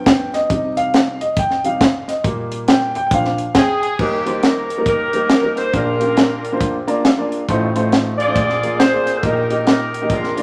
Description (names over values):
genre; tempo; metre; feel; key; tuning
uptempo gospel; 137 BPM; 4/4; swing 61% on 8ths; Eb major; A4 = 440 Hz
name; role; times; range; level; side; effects
clear upright piano; accompaniment; 0.0-10.4 s; A1 to Bb5; -22 LUFS; equal; none
tight funk drum kit; drums; 0.1-10.4 s; crash cymbal, hi-hat, kick drum, snare drum; -19 LUFS; equal; none
bright saxophone section; melody; 3.6-10.4 s; Bb3 to D5; -25 LUFS; equal; none
warm alto saxophone; melody; 3.6-10.4 s; G4 to D5; -24 LUFS; equal; none
room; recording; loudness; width
moderate large studio reverb, RT60 1.3 s; vinyl crackle; -17 LUFS; mono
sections
0.0-4.0 A section; 4.0-10.4 B section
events
upright piano solo 0.0-4.0; upright piano fill 6.6-7.5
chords
0.5 Cm; 2.2 Gm/Bb; 3.1 Bb; 4.0 Eb; 5.7 Bb; 7.5 F7/A; 8.4 Bb7; 9.2 Eb/Bb